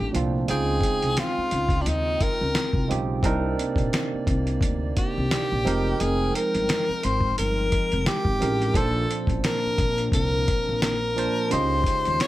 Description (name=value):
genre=R&B, neo-soul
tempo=87 BPM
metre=4/4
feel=swing 57% on 16ths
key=Bb major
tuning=A4 = 440 Hz
part: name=breathy tenor saxophone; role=melody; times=0.0-12.3 s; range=D4 to Db5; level=-25 LUFS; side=left 1 dB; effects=slapback echo, plate reverb
part: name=barky tine electric piano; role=accompaniment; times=0.0-12.3 s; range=Bb2 to A5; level=-29 LUFS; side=right 4 dB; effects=overdrive, plate reverb
part: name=hollow soft pad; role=sustained chords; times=0.0-12.3 s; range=C3 to G5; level=-35 LUFS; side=left 2 dB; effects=chorus, plate reverb
part: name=upright bass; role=bass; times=0.0-12.2 s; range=F1 to Eb2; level=-27 LUFS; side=equal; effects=none
part: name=dusty soul sampler-style drum kit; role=drums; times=0.1-12.3 s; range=hi-hat, kick drum, snare drum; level=-26 LUFS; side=equal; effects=none
room=light reverb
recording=none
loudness=-21 LUFS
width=side -16 dB against mid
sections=0.0-12.3 A section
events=none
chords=0.5 Dbmaj9#11; 3.2 Cm9; 5.6 Fm11; 8.7 Bbmaj9; 11.5 Dbmaj9#11